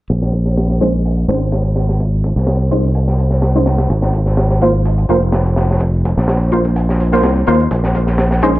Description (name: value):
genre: breakbeat, breaks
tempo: 126 BPM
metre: 4/4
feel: swing 53% on 16ths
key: Bb minor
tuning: A4 = 440 Hz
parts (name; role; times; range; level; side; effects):
- modern bright fingered electric bass; bass; 0.1-8.6 s; F1 to Eb2; -14 LUFS; equal; low-pass filter
- crunchy breakbeat drum kit; drums; 0.1-8.6 s; hi-hat, kick drum, snare drum; -21 LUFS; equal; high-pass filter on kick, high-pass filter on hats, high-pass filter on snare, high-pass filter on room
- electronic hi-hat; drums; 0.1-8.6 s; none; -55 LUFS; left 2 dB; none
- orchestra-hit-like synth stab; stabs; 0.8-8.5 s; Ab3 to C5; -17 LUFS; equal; built-in reverb, cassette tape, digital delay
room: small room ambience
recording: low-pass filter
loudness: -12 LUFS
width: side -16 dB against mid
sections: 0.1-8.6 A section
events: filter sweep on fingered electric bass 0.1-8.6; filter sweep on synth stab 0.1-8.6; filter sweep 0.1-8.6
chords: 0.1 Bbm11; 3.9 Ab69; 7.7 Bbm11